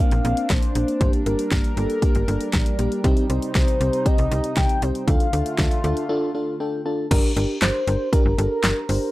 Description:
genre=synth-pop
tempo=118 BPM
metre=4/4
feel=straight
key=G minor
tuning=A4 = 440 Hz
part: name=warm velvety synth lead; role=melody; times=0.0-9.1 s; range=A4 to G5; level=-27 LUFS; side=left 1 dB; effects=chorus, tape echo
part: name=mellow FM electric piano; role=accompaniment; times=0.0-9.1 s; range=Bb3 to A5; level=-26 LUFS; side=left 1 dB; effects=chorus
part: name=chorused pulse-width pad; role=sustained chords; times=0.0-7.1 s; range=C3 to Bb4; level=-30 LUFS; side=equal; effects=phaser
part: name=slap-like FM bass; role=bass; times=0.1-9.0 s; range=G1 to D2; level=-24 LUFS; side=equal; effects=none
part: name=pop drum kit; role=drums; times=0.1-9.0 s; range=crash cymbal, handclaps, hi-hat, kick drum, snare drum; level=-20 LUFS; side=equal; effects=none
room=little or no reverb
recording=dry, gritty hardware recording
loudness=-19 LUFS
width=side -17 dB against mid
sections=0.0-7.1 A section; 7.1-9.1 B section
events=break 6.1-7.1; FM electric piano fill 6.1-7.1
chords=0.0 Bbadd9; 1.0 Gm; 3.0 Cm; 5.1 Dm; 7.1 Gm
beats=0.50 | 1.01 1.52 2.03 2.53 | 3.04 3.55 4.06 4.57 | 5.08 5.58 6.09 6.60 | 7.11 7.62 8.13 8.64

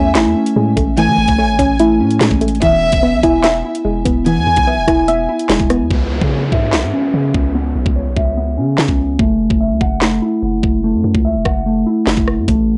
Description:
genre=hip hop, drill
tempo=146 BPM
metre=4/4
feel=half-time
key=C# minor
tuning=A4 = 440 Hz
part: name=warm chamber violin section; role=second line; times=0.0-5.0 s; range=E5 to G#5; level=-20 LUFS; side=equal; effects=tape echo
part: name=soft round pluck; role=accompaniment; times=0.0-5.9 s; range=E3 to E5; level=-18 LUFS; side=equal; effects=chorus, low-pass filter
part: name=mellow electric guitar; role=arpeggios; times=0.0-12.8 s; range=A3 to G#5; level=-20 LUFS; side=equal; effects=low-pass filter, tape echo
part: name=long sustained 808-style bass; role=bass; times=0.0-12.8 s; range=D#1 to E3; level=-22 LUFS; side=equal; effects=none
part: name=drill drum kit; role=drums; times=0.2-12.6 s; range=handclaps, hi-hat, kick drum, rim click, snare drum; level=-20 LUFS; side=equal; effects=none
part: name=downlifter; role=sound effects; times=5.9-9.2 s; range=none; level=-30 LUFS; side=equal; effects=none
room=little or no reverb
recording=dry, gritty hardware recording, nothing above 10.8 kHz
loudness=-15 LUFS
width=mono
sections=0.0-5.9 A section; 5.9-12.8 B section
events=break 5.9-12.5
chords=0.0 Amaj7; 2.6 E; 5.9 C#m7; 9.2 F#m7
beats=0.15 0.56 | 0.97 1.39 1.80 2.21 | 2.62 3.03 3.44 3.85 | 4.26 4.67 5.08 5.49 | 5.91 6.32 6.73 7.14 | 7.55 7.96 8.37 8.78 | 9.19 9.60 10.02 10.43 | 10.84 11.25 11.66 12.07 | 12.48

